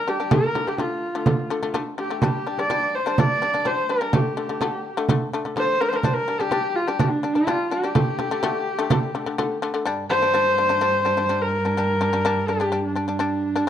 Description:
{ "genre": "mongolian traditional, Mongolian folk", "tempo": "126 BPM", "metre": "4/4", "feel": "straight", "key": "G minor", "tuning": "A4 = 440 Hz", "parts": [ { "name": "clear horsehead fiddle", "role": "melody", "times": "0.0-13.7 s", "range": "D4 to D5", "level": "-22 LUFS", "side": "equal", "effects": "none" }, { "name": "shamisen", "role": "arpeggios", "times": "0.0-13.7 s", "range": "D3 to D4", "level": "-26 LUFS", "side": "left 4 dB", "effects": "none" }, { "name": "frame drum", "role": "percussion", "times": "0.3-9.5 s", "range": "none", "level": "-22 LUFS", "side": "right 3 dB", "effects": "none" }, { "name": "dark cello", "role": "drone", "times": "9.9-13.7 s", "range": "G2", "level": "-28 LUFS", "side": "right 2 dB", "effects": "stereo widening" } ], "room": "studio reverb", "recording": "dry, close 1970s-style studio recording", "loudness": "-20 LUFS", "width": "side -10 dB against mid", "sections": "0.0-9.9 A section; 9.9-13.7 B section", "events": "none", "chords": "0.3 D5; 2.2 G5; 4.1 D5; 6.0 G5; 7.9 D5; 9.9 G5" }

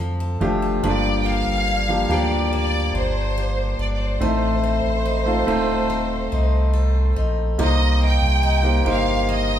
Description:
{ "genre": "pop", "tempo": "71 BPM", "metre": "4/4", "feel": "straight", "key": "G minor", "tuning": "A4 = 443 Hz", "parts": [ { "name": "clear grand piano", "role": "accompaniment", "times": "0.0-9.6 s", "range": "G2 to C5", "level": "-23 LUFS", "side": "equal", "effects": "none" }, { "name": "picked steel-string acoustic guitar", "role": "arpeggios", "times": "0.0-9.6 s", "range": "G2 to Bb4", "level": "-28 LUFS", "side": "left 4 dB", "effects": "none" }, { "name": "warm sub bass", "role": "bass", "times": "0.0-9.6 s", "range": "Eb1 to F2", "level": "-22 LUFS", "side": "equal", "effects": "none" }, { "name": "bright studio violin section", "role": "melody", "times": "0.9-9.6 s", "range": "C5 to G5", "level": "-24 LUFS", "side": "equal", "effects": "none" } ], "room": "wet large studio reverb, RT60 1.4 s", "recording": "band playing live in one room", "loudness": "-18 LUFS", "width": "side -10 dB against mid", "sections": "0.8-9.6 A section", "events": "none", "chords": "0.0 Dm; 0.8 Gm7; 4.2 Adim; 7.6 Cm7" }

